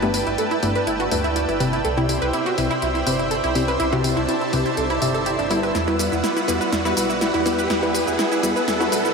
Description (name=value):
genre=progressive house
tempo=123 BPM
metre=4/4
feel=straight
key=unclear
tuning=A4 = 440 Hz
part: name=supersaw pad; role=sustained chords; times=0.0-9.1 s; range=B4 to E6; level=-26 LUFS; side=right 1 dB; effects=none
part: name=wide unison pluck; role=arpeggios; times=0.0-9.1 s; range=D4 to E5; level=-24 LUFS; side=right 1 dB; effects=tape echo
part: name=wide unison pluck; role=stabs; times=0.0-9.1 s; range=G2 to B4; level=-24 LUFS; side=left 2 dB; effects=tape echo
part: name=round analog bass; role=bass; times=0.0-9.1 s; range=G1 to E2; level=-30 LUFS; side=equal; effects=none
part: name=deep house drum kit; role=drums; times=0.0-9.1 s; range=hi-hat, shaker, snare drum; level=-28 LUFS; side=equal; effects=overdrive
part: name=riser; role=sound effects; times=0.0-9.1 s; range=none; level=-30 LUFS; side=right 1 dB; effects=none
part: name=drifting glass-harmonics texture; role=texture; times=0.0-9.1 s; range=D5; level=-31 LUFS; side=right 7 dB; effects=chorus, built-in reverb
room=wet huge ambient reverb, RT60 4.3 s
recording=dreamy mix soaked in reverb, high-pass filter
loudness=-18 LUFS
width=side -4 dB against mid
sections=0.0-9.1 A section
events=build-up 0.0-9.1; riser 0.0-9.1; filter sweep on synth pluck 0.0-9.1; drum fill 5.8-9.1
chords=0.0 Gadd9; 5.8 Emadd9